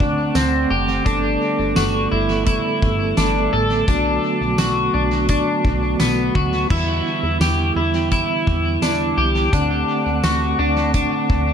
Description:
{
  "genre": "dream pop",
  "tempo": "85 BPM",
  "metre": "4/4",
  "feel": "straight",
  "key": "E minor",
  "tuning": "A4 = 440 Hz",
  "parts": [
    { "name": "mellow tonewheel organ", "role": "sustained chords", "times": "0.0-11.5 s", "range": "D3 to F#5", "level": "-23 LUFS", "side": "right 5 dB", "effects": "fast rotary speaker" },
    { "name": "electric guitar at the edge of break-up", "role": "arpeggios", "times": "0.0-11.5 s", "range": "B3 to A4", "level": "-20 LUFS", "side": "left 2 dB", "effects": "wide subtle chorus, tape echo" },
    { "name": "plucky analog bass", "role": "bass", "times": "0.0-11.5 s", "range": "F#1 to E2", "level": "-23 LUFS", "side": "equal", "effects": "none" },
    { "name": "loose indie drum kit", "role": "drums", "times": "0.0-11.5 s", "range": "crash cymbal, hi-hat, kick drum, snare drum, tambourine", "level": "-23 LUFS", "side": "equal", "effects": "tape echo" }
  ],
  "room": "light reverb, small room ambience",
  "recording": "echo-heavy mix",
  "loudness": "-16 LUFS",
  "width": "side -8 dB against mid",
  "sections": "0.0-6.7 A section; 6.7-11.5 A section",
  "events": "none",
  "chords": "0.0 D7; 1.1 Gadd9; 3.9 Bm7; 6.7 Em7; 9.5 D7",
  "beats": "0.35 | 1.06 1.76 2.47 3.18 | 3.88 4.59 5.29 6.00 | 6.71 7.41 8.12 8.82 | 9.53 10.23 10.94"
}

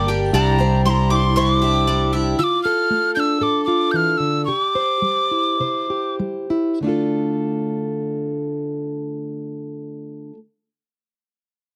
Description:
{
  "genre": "folk",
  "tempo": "94-118 BPM",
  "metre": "4/4",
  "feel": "straight",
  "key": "D minor",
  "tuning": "A4 = 439 Hz",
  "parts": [
    { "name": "breathy mellow tin whistle", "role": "melody", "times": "0.0-6.1 s", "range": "Bb5 to G6", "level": "-22 LUFS", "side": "equal", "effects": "none" },
    { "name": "fingerpicked plugged-in steel-string acoustic guitar", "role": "accompaniment", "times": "0.0-10.4 s", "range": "A2 to C5", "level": "-24 LUFS", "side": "equal", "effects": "none" },
    { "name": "picked twelve-string acoustic guitar", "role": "accompaniment", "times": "0.0-2.4 s", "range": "C3 to G4", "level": "-26 LUFS", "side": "equal", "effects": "none" },
    { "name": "bowl-back mandolin", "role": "arpeggios", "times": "0.0-2.4 s", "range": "D5 to D6", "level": "-28 LUFS", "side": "equal", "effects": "none" },
    { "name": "picked electric bass", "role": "bass", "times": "0.0-2.3 s", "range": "G1 to C2", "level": "-21 LUFS", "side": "equal", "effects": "none" }
  ],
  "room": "light reverb",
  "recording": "none",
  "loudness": "-20 LUFS",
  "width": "mono",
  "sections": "0.0-6.8 A section; 6.8-11.8 B section",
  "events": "slowing down 2.4-6.8",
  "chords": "0.3 Cadd9; 2.4 Dm; 4.5 Cadd9; 6.8 Dm",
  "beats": "| 0.34 0.85 1.36 1.87 | 2.38 2.89 3.41 3.93 | 4.47 5.03 5.60 6.20 | 6.82 7.46 8.09 8.73 | 9.37 10.01"
}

